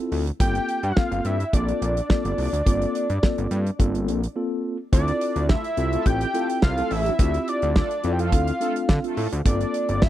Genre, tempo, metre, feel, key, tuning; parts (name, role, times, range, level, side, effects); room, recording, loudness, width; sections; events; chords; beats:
early-eighties boogie funk; 106 BPM; 4/4; straight; A4 = 440 Hz
mellow tine electric piano; accompaniment; 0.0-10.1 s; Bb3 to A4; -27 LUFS; left 2 dB; medium stereo tremolo
fat analog bass; bass; 0.1-10.1 s; G1 to D3; -25 LUFS; equal
damped 70s drum kit; drums; 0.1-10.1 s; hi-hat, kick drum, snare drum; -22 LUFS; equal
fat analog lead; melody; 0.4-10.1 s; D5 to G5; -27 LUFS; equal; chorus
mellow synth brass; second line; 5.5-10.1 s; A3 to A4; -31 LUFS; right 2 dB; chorus, phaser
little or no reverb; dry, close 1970s-style studio recording; -20 LUFS; side -13 dB against mid
0.0-4.9 A section; 4.9-10.1 B section
break 4.4-4.9
0.4 Gm11; 4.9 Dm9; 9.5 Gm11
| 0.40 0.97 1.53 2.10 | 2.67 3.23 3.80 4.36 | 4.93 5.50 6.06 6.63 | 7.19 7.76 8.32 8.89 | 9.46 10.02